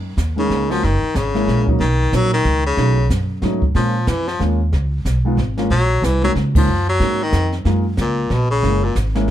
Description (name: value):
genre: jazz, small-group swing and bop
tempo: 184 BPM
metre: 3/4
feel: swing 61% on 8ths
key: F# major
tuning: A4 = 444 Hz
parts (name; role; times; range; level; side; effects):
- upright bass; bass; 0.0-9.3 s; F#1 to A#2; -18 LUFS; right 1 dB; none
- jazz brush drum kit; drums; 0.2-9.3 s; brushed snare drum, hi-hat, kick drum, ride cymbal, snare drum; -23 LUFS; equal; none
- edgy baritone saxophone; melody; 0.4-9.0 s; A#2 to F#3; -20 LUFS; left 2 dB; plate reverb
- warm grand piano; accompaniment; 0.4-9.3 s; F#3 to F#4; -22 LUFS; equal; none
room: light reverb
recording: dark, warm production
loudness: -15 LUFS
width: side -12 dB against mid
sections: 0.0-7.7 A section; 7.7-9.3 B section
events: band accent 6.5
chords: 0.0 F#69; 0.8 F#7; 1.8 Bmaj9; 2.8 B9; 3.8 A#m7; 4.7 C#7; 5.7 F#69; 7.7 F#maj13; 8.6 F#7